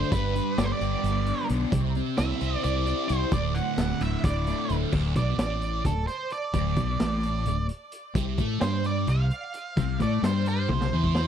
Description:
psychedelic rock; 261 BPM (eighths); 7/8; straight; A4 = 439 Hz
octave-fuzz lead guitar; melody; 0.0-11.3 s; A4 to F#5; -32 LUFS; right 4 dB; distortion, tape echo
thick fuzz guitar; riff; 0.0-11.3 s; D2 to C5; -28 LUFS; left 1 dB; distortion, phaser
fingered electric bass; bass; 0.0-11.3 s; D1 to A2; -28 LUFS; equal
raw garage drum kit; drums; 0.1-11.3 s; crash cymbal, hi-hat, kick drum, snare drum, toms; -29 LUFS; equal
little or no reverb; dry, close 1970s-style studio recording; -24 LUFS; side -9 dB against mid
0.0-4.9 A section; 4.9-11.3 B section
lead electric guitar solo 4.9-11.3; drum fill 10.7-11.3
0.1 G; 1.7 C; 3.3 Dadd9; 4.9 D5; 8.2 C5

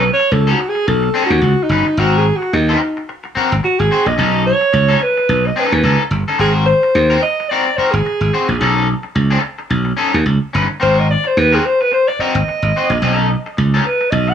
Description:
funk; 109 BPM; 4/4; swing 56% on 16ths; Ab mixolydian; A4 = 440 Hz
warm alto saxophone; melody; 0.0-14.3 s; D#4 to F#5; -15 LUFS; equal
electric guitar at the edge of break-up; accompaniment; 0.0-14.3 s; C4 to C5; -19 LUFS; left 4 dB; wide subtle chorus
glassy slap bass; bass; 0.0-14.3 s; G1 to D#2; -15 LUFS; right 1 dB
light reverb, small room ambience; -12 LUFS; side -8 dB against mid
0.0-14.3 A section
alto saxophone solo 0.0-14.3
0.0 B9; 2.0 Ab9; 4.2 B9; 6.4 Ab9; 8.6 B9; 10.8 Ab9; 13.0 B9

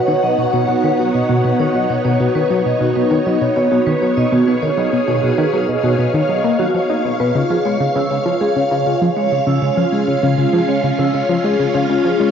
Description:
ambient, sequencer-driven space music; 99 BPM; 4/4; straight; A4 = 440 Hz
phased string machine; sustained chords; 0.0-12.3 s; G#3 to F#5; -19 LUFS; equal; ensemble chorus, phaser, cassette tape
vibraphone with medium hard mallets; arpeggios; 0.0-12.3 s; E#4 to E6; -19 LUFS; moving between left 4 dB and right 5 dB; auto-pan, cassette tape, ping-pong delay
tight sequenced synth; riff; 0.1-12.3 s; B2 to D#4; -18 LUFS; equal; chorus, cassette tape, ping-pong delay
wet lush hall reverb, RT60 2.7 s; home recording on cassette, nothing above 7.6 kHz; -14 LUFS; side -8 dB against mid
0.0-12.3 A section
0.0 Badd9; 7.4 C#

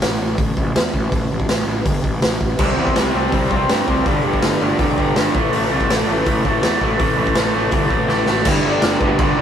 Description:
punk rock; 163 BPM; 4/4; straight; A4 = 440 Hz
fuzz picked electric bass; bass; 0.0-9.4 s; E1 to G2; -23 LUFS; equal; overdrive
raw garage drum kit; drums; 0.0-9.3 s; crash cymbal, hi-hat, kick drum, snare drum; -19 LUFS; equal
raw garage guitar; riff; 2.6-9.4 s; G2 to C4; -18 LUFS; equal; overdrive
lead guitar through a small cranked amp; melody; 8.1-9.4 s; B3 to G5; -24 LUFS; left 1 dB; overdrive
light reverb; rough rehearsal-room recording; -15 LUFS; side -8 dB against mid
0.0-8.5 A section
drum fill 8.1-8.5
0.0 N.C.; 2.6 C5; 4.1 G5; 5.4 A5; 8.5 G

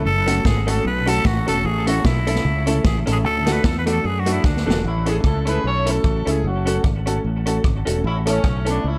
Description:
ska; 150 BPM; 4/4; swing 56% on 8ths; A major; A4 = 443 Hz
fingered electric bass; bass; 0.0-9.0 s; E1 to F#2; -24 LUFS; equal
growling tenor saxophone; melody; 0.1-4.8 s; D4 to B4; -27 LUFS; equal; tape echo
clean electric guitar; riff; 0.1-4.8 s; E2 to F#3; -31 LUFS; equal
semi-hollow electric guitar; accompaniment; 0.3-8.8 s; A3 to A4; -32 LUFS; equal; tape echo
dark upright piano; stabs; 0.3-8.8 s; A3 to A4; -28 LUFS; equal
vintage drum kit; drums; 0.3-8.7 s; hi-hat, kick drum, rim click, snare drum; -24 LUFS; equal
mellow horn section; melody; 4.9-9.0 s; A3 to C#5; -27 LUFS; equal
light reverb; -20 LUFS; mono
0.0-4.8 A section; 4.8-9.0 B section
tenor saxophone solo 0.0-4.8; drum fill 4.4-4.8
0.1 F#m; 1.6 A; 3.2 D; 4.8 A; 6.4 F#m; 8.0 A

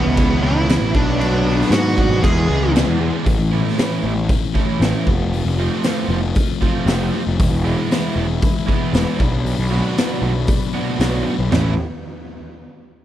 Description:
indie rock; 116 BPM; 4/4; straight; A major; A4 = 440 Hz
smooth overdriven lead guitar; melody; 0.0-2.7 s; B3 to G#4; -21 LUFS; right 1 dB; slapback echo
clear trumpet; second line; 0.0-3.0 s; G#3 to C#4; -33 LUFS; left 7 dB
mellow woodwind section; sustained chords; 0.0-3.2, 7.4-11.8 s; C#4 to B5; -34 LUFS; equal
biting overdriven guitar; riff; 0.0-11.7 s; E2 to G#4; -23 LUFS; right 9 dB; analog chorus, slapback echo
sludgy distorted guitar; riff; 0.0-11.7 s; A2 to F4; -24 LUFS; left 8 dB; overdrive
fuzz picked electric bass; bass; 0.0-11.8 s; E1 to G#2; -20 LUFS; equal; overdrive
raw garage drum kit; drums; 0.2-11.6 s; crash cymbal, hi-hat, kick drum, snare drum, toms; -20 LUFS; equal
studio reverb; -15 LUFS; side -12 dB against mid
0.0-3.3 A section; 3.3-11.5 B section; 11.5-13.0 C section
0.0 E; 0.9 Bm; 2.2 E; 3.3 A; 5.1 F; 7.4 E; 9.2 Bm; 11.5 A

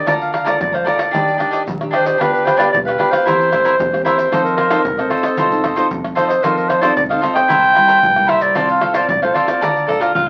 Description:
samba and choro; 113 BPM; 4/4; straight; A4 = 440 Hz
warm clarinet; melody; 0.0-10.1 s; A4 to G5; -18 LUFS; equal
cavaquinho; accompaniment; 0.0-10.1 s; D4 to Bb5; -20 LUFS; equal
nylon-string guitar; accompaniment; 0.0-10.3 s; G2 to A4; -27 LUFS; equal
hollow-body short-scale fingered electric bass; bass; 0.1-10.3 s; B1 to F2; -33 LUFS; equal
tube shaker, surdo, pandeiro and tamborim; percussion; 0.1-10.3 s; -26 LUFS; equal
breathy tenor saxophone; second line; 9.9-10.3 s; F4 to A4; -18 LUFS; equal
wet small room reverb, RT60 0.6 s; very old 78 rpm record, vinyl crackle; -15 LUFS; mono
0.0-10.3 A section
0.1 Bbmaj7/D; 1.1 Ebmaj7; 2.2 G7/D; 3.3 C7/E; 4.3 F7; 7.5 C7; 8.6 F/C; 9.6 Bbmaj7/D

